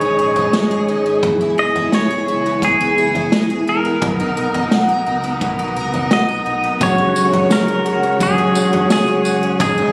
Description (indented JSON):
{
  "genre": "dream pop",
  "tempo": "86 BPM",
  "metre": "4/4",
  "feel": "straight",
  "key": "unclear",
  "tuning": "A4 = 440 Hz",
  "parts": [
    { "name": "pedal steel guitar", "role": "melody", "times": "0.0-9.9 s", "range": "G#4 to D#5", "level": "-22 LUFS", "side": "equal", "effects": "delay" },
    { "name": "mellow tonewheel organ", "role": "sustained chords", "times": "0.0-9.9 s", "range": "B3 to D#6", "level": "-25 LUFS", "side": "equal", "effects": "chorus vibrato, fast rotary speaker" },
    { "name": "picked twelve-string acoustic guitar", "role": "arpeggios", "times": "0.0-9.9 s", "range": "G#2 to A#4", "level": "-22 LUFS", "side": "equal", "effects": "analog chorus, delay" },
    { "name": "sub bass with octave", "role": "bass", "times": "0.0-9.9 s", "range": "E1 to C#2", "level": "-34 LUFS", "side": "equal", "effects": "none" },
    { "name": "vintage drum kit", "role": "drums", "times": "0.4-9.8 s", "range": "kick drum, snare drum, tambourine, toms", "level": "-22 LUFS", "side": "equal", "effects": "none" },
    { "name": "electric guitar at the edge of break-up", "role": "accompaniment", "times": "6.8-9.9 s", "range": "G#2 to G#4", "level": "-21 LUFS", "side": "equal", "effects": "tremolo, lush chorus" }
  ],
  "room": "moderate shimmer reverb, RT60 5.8 s",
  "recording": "recorded on a phone in the room, club reverb",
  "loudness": "-16 LUFS",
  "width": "mono",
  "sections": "0.0-6.8 A section; 6.8-9.9 B section",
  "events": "none",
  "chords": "0.0 G#sus4; 1.2 E; 4.0 Bmaj7; 6.8 F#sus2"
}